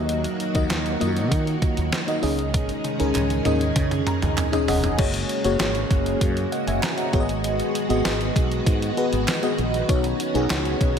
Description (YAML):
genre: 1980s-style pop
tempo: 98 BPM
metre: 4/4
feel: straight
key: unclear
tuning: A4 = 441 Hz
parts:
  - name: FM electric piano with soft pad layer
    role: accompaniment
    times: 0.0-11.0 s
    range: A#3 to A#5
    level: -25 LUFS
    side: left 1 dB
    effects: chorus, tremolo, shimmer reverb
  - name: string machine, full ensemble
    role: sustained chords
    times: 0.0-11.0 s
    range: C#3 to G#4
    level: -27 LUFS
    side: right 1 dB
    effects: ensemble chorus
  - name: mellow fretless electric bass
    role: bass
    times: 0.0-11.0 s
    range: E1 to D#3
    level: -26 LUFS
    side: equal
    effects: tube saturation
  - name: clean 12-bit digital drum machine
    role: drums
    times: 0.1-11.0 s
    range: crash cymbal, hi-hat, kick drum, snare drum, tambourine, toms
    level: -25 LUFS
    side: equal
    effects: gated reverb
  - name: group handclap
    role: percussion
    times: 0.7-10.6 s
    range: none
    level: -39 LUFS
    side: right 8 dB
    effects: none
room: moderate concert hall reverb, RT60 2.3 s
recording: none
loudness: -20 LUFS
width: side -7 dB against mid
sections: 0.0-5.0 A section; 5.0-11.0 B section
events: drum fill 2.5-5.0; FM electric piano fill 3.8-5.0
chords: 0.0 D#m; 2.2 C#sus2; 5.0 F#add9; 7.1 G#m7; 9.9 Badd9